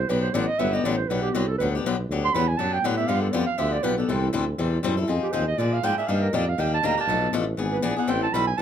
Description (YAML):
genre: acoustic string swing (jazz manouche)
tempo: 240 BPM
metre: 4/4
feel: swing 56% on 8ths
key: G major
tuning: A4 = 440 Hz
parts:
  - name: mellow clarinet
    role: second line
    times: 0.0-8.6 s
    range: F#4 to C6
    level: -26 LUFS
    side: right 6 dB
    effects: none
  - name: mellow tuba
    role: bass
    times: 0.0-8.6 s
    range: G1 to Bb2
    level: -26 LUFS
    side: right 1 dB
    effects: none
  - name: picked swing-style acoustic guitar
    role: accompaniment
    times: 0.1-8.6 s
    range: B2 to A4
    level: -26 LUFS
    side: left 6 dB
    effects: none
room: moderate club reverb, RT60 0.5 s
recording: none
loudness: -22 LUFS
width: side -9 dB against mid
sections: 0.0-2.1 A section; 2.1-8.6 A section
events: clarinet solo 0.0-8.6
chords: 0.1 Gmaj7; 2.1 Gmaj9; 3.1 G7; 4.1 C6; 5.1 Fm7; 5.6 Bb7; 6.1 Ebmaj9; 7.1 Bm7b5; 7.6 E7; 8.1 Am9